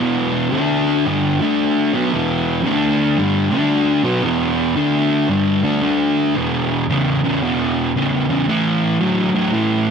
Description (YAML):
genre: rock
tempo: 114 BPM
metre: 4/4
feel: swing 64% on 8ths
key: E minor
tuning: A4 = 440 Hz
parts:
  - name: fuzz guitar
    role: solo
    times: 0.0-9.9 s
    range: E2 to D4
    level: -15 LUFS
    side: equal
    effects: distortion, tape echo
room: light reverb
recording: none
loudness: -15 LUFS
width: side -6 dB against mid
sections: 0.0-6.4 A section; 6.4-9.9 B section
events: none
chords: 0.0 E5; 0.5 D5; 1.1 G5; 1.3 D5; 1.9 E5; 2.7 D5; 3.2 G5; 3.4 D5; 4.0 E5; 4.8 D5; 5.3 Gsus2; 5.8 D5; 6.4 E5; 8.5 A5